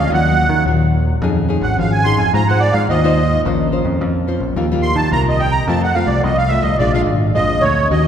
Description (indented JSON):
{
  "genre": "samba and choro",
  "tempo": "108 BPM",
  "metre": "4/4",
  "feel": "straight",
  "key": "Bb minor",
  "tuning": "A4 = 440 Hz",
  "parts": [
    { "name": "musette accordion", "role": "melody", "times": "0.0-8.1 s", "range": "Db5 to C6", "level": "-18 LUFS", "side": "right 2 dB", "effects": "none" },
    { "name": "nylon-string guitar", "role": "accompaniment", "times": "0.0-8.1 s", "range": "F2 to C5", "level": "-19 LUFS", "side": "left 3 dB", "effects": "none" },
    { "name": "picked electric bass", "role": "bass", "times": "0.0-8.1 s", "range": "Ab1 to Eb3", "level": "-17 LUFS", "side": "equal", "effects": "none" }
  ],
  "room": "wet church reverb, RT60 2.7 s",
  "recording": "recorded in a church or concert hall",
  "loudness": "-13 LUFS",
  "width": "side -8 dB against mid",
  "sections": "0.0-7.9 A section",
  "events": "accordion solo 0.0-7.9",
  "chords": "0.1 Ebmadd9; 1.2 Dbadd9; 2.3 Ab6; 3.5 Bbmadd9; 4.6 Ebadd9; 5.7 F; 6.8 Bb7"
}